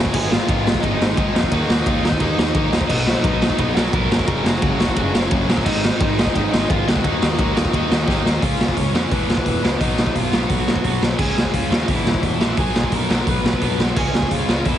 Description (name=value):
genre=punk rock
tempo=174 BPM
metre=4/4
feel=straight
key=unclear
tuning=A4 = 438 Hz
part: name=crunchy overdriven guitar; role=riff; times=0.0-14.8 s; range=E2 to D#4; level=-25 LUFS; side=right 14 dB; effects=none
part: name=distorted electric guitar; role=riff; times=0.0-14.8 s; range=E2 to D#4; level=-25 LUFS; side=left 13 dB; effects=overdrive
part: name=fuzz picked electric bass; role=bass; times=0.0-14.8 s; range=E1 to E#2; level=-24 LUFS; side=equal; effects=overdrive
part: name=raw garage guitar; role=melody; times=0.1-14.8 s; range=B3 to B5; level=-26 LUFS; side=left 1 dB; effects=overdrive
part: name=raw garage drum kit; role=drums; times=0.1-14.7 s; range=crash cymbal, hi-hat, kick drum, ride cymbal, snare drum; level=-19 LUFS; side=equal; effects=none
room=little or no reverb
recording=heavily compressed radio sound, nothing above 11.0 kHz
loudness=-16 LUFS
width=side -10 dB against mid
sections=0.0-8.4 A section; 8.4-14.8 B section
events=drum fill 8.1-8.4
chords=0.1 G#5; 1.5 D#m; 2.9 B; 4.1 F#; 5.7 G#5; 7.0 D#m; 8.4 C#; 9.1 E5; 9.8 B; 11.2 C#; 11.9 E5; 12.6 B5; 14.0 C#